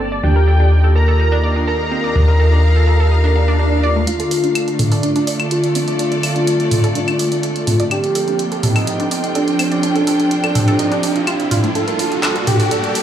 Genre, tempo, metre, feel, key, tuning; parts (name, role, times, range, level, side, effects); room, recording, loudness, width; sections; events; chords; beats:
melodic techno; 125 BPM; 4/4; straight; D phrygian; A4 = 440 Hz
wide unison lead; melody; 0.0-13.0 s; D4 to Bb4; -20 LUFS; equal; analog chorus, digital delay
soft supersaw; second line; 0.0-4.0 s; G5 to Bb5; -26 LUFS; left 1 dB; digital delay
warm analog pad; sustained chords; 0.0-13.0 s; D3 to A4; -23 LUFS; right 2 dB; wide subtle chorus
analog pluck; arpeggios; 0.0-13.0 s; A3 to F5; -24 LUFS; right 2 dB; chorus, digital delay
plucky analog bass; bass; 0.0-4.0 s; G1 to Eb2; -13 LUFS; equal
rich chamber string section; texture; 0.0-13.0 s; A3 to A5; -26 LUFS; left 2 dB
swell and riser; sound effects; 3.3-13.0 s; -26 LUFS; left 1 dB
house drum kit; drums; 4.1-13.0 s; claves, handclaps, hi-hat, toms; -20 LUFS; equal; overdrive, low-pass filter on hats, low-pass filter on perc, low-pass filter on toms, low-pass filter on snare, low-pass filter on room
digital ambience; low-pass filter, small room reverb; -13 LUFS; side -10 dB against mid
0.0-4.1 A section; 4.1-13.0 B section
filter sweep 0.0-4.1; swell 3.3-4.1; build-up 4.1-13.0; riser 4.1-13.0; filter sweep on synth pluck 4.1-13.0
0.2 Eb; 4.1 Dm; 7.9 Fadd9; 11.8 Gm
| 0.23 0.71 1.19 1.67 | 2.15 2.63 3.11 3.59 | 4.07 4.55 5.03 5.51 | 5.99 6.47 6.95 7.43 | 7.91 8.39 8.87 9.35 | 9.83 10.31 10.79 11.27 | 11.75 12.23 12.71